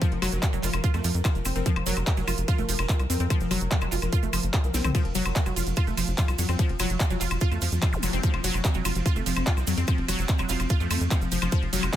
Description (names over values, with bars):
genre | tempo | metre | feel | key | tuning
psychedelic trance | 146 BPM | 4/4 | straight | unclear | A4 = 440 Hz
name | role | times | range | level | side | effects
pulsing gated texture | sustained chords | 0.0-12.0 s | F3 to Bb4 | -33 LUFS | left 2 dB | chorus, built-in reverb, sidechain pumping
wide unison pluck | riff | 0.0-11.8 s | F3 to F4 | -31 LUFS | moving between left 7 dB and right 8 dB | auto-pan, vintage 12-bit sampler grit, sidechain pumping, tape echo
drum and bass drum kit | drums | 0.0-12.0 s | handclaps, hi-hat, ride cymbal, snare drum, toms, woodblock | -31 LUFS | equal | overdrive, small room ambience
electronic kick drum | drums | 0.0-12.0 s | none | -24 LUFS | equal | overdrive, small room ambience
cabasa | percussion | 0.0-11.9 s | none | -37 LUFS | right 5 dB | none
tight sequencer bass | bass | 0.1-11.9 s | F1 to F2 | -28 LUFS | equal | none
zap | sound effects | 7.9-8.0 s | none | -36 LUFS | left 1 dB | none
room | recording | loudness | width
digital ambience | none | -23 LUFS | side -12 dB against mid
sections
0.0-12.0 A section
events
drum fill 4.7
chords
0.0 F5